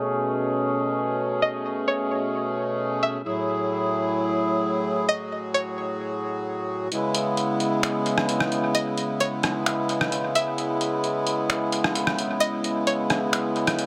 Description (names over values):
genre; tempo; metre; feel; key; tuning
hip hop, atmospheric cloud-rap; 131 BPM; 4/4; half-time; C# minor; A4 = 440 Hz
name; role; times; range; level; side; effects
accordion; sustained chords; 0.0-13.9 s; A2 to G#4; -26 LUFS; equal; low-pass filter
string-like resonator pluck; melody; 1.4-13.7 s; C#5 to E5; -29 LUFS; equal; chorus, low-pass filter, dub echo
trip hop sampler-style drum kit; drums; 6.9-13.9 s; finger snaps, hi-hat, rim click; -29 LUFS; equal; dub echo
room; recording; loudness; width
moderate spring reverb, RT60 1.3 s; echo-heavy mix; -25 LUFS; mono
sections
0.0-6.9 A section; 6.9-13.9 B section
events
filter sweep 0.0-6.9; kick muted 6.9-13.9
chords
0.0 Amaj9; 3.3 F#m9; 6.9 C#m7